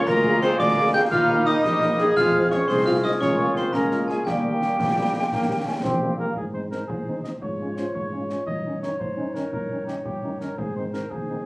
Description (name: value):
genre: military-style march for wind band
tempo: 114 BPM (dotted quarters)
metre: 6/8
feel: straight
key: unclear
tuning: A4 = 440 Hz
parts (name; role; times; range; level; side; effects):
- mellow cornet; melody; 0.0-11.5 s; G4 to G5; -29 LUFS; equal; none
- dark woodwind section; second line; 0.0-11.5 s; Bb3 to Db5; -28 LUFS; equal; none
- glockenspiel with soft plastic mallets; second line; 0.0-6.1 s; G5 to G6; -32 LUFS; left 1 dB; none
- mellow euphonium; second line; 0.0-6.2 s; G3 to G4; -27 LUFS; right 1 dB; none
- mellow hollow piccolo; second line; 0.0-6.2 s; G5 to G6; -26 LUFS; equal; none
- warm trombone section; sustained chords; 0.0-6.3 s; G3 to Db4; -29 LUFS; right 1 dB; none
- mellow tuba; bass; 0.1-11.5 s; Bb1 to Ab2; -29 LUFS; equal; none
- concert snare drum, clash cymbals and concert bass drum; drums; 0.1-11.2 s; none; -32 LUFS; equal; none
- mellow French horn section; accompaniment; 0.2-11.4 s; Eb3 to Ab4; -29 LUFS; equal; none
room: moderate booth ambience, RT60 0.2 s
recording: recorded on a phone in the room, club ambience, compression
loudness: -20 LUFS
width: side -22 dB against mid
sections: 0.0-6.4 A section; 6.4-11.5 B section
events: none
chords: 0.1 Bb7/D; 1.1 Eb; 2.2 Fm; 3.2 Bbm7/Db; 4.3 Eb; 6.4 Ab; 7.4 Db/Ab; 8.5 Eb7/G; 10.6 Ab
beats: | 0.07 0.59 | 1.12 1.64 | 2.17 2.69 | 3.22 3.74 | 4.27 4.79 | 5.32 5.84 | 6.37 6.89 | 7.42 7.95 | 8.47 9.00 | 9.53 10.05 | 10.58 11.11